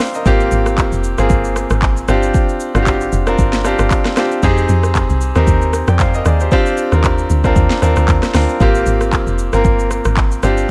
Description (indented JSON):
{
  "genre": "amapiano",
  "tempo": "115 BPM",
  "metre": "4/4",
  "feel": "swing 55% on 16ths",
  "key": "unclear",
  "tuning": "A4 = 439 Hz",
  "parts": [
    { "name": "bright grand piano", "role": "accompaniment", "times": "0.0-10.7 s", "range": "Bb3 to G5", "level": "-19 LUFS", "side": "equal", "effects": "none" },
    { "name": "afro-pop drum kit", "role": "drums", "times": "0.0-10.7 s", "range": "handclaps, hi-hat, kick drum, rim click, shaker, snare drum", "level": "-19 LUFS", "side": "equal", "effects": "vintage 12-bit sampler grit" },
    { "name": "deep log drum bass", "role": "bass", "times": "0.3-10.7 s", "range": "F1 to F2", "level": "-18 LUFS", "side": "equal", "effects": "none" }
  ],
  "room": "little or no reverb",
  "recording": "none",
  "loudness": "-14 LUFS",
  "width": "mono",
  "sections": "0.0-10.7 A section",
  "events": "none",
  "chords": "0.3 Abmaj13; 2.1 G7sus4; 4.4 Fm9; 6.5 Ebmaj13; 8.6 Abmaj13",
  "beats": "| 0.26 0.78 1.30 1.82 | 2.34 2.87 3.39 3.91 | 4.43 4.95 5.47 6.00 | 6.52 7.04 7.56 8.08 | 8.60 9.13 9.65 10.17 | 10.69"
}